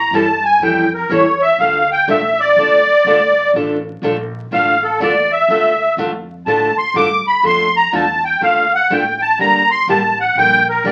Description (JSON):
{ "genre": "acoustic string swing (jazz manouche)", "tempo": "123 BPM", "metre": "4/4", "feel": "swing 64% on 8ths", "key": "D minor", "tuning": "A4 = 440 Hz", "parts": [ { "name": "musette accordion", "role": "melody", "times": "0.0-10.9 s", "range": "A4 to D6", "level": "-15 LUFS", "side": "equal", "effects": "none" }, { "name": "upright bass", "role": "bass", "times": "0.0-10.9 s", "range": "F1 to A2", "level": "-34 LUFS", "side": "equal", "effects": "none" }, { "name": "picked steel-string acoustic guitar", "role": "accompaniment", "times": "0.1-10.9 s", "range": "D3 to A4", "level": "-21 LUFS", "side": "equal", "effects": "none" } ], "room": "wet club reverb, RT60 0.7 s", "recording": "very old 78 rpm record, vinyl crackle", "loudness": "-14 LUFS", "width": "mono", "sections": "0.0-1.6 A section; 1.6-10.9 A section", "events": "accordion solo 0.0-10.9", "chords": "0.0 A7; 1.6 Dm; 9.4 Gm", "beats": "0.14 0.62 1.11 | 1.60 2.09 2.57 3.06 | 3.55 4.04 4.52 5.01 | 5.50 5.99 6.47 6.96 | 7.45 7.93 8.42 8.90 | 9.39 9.88 10.36 10.85" }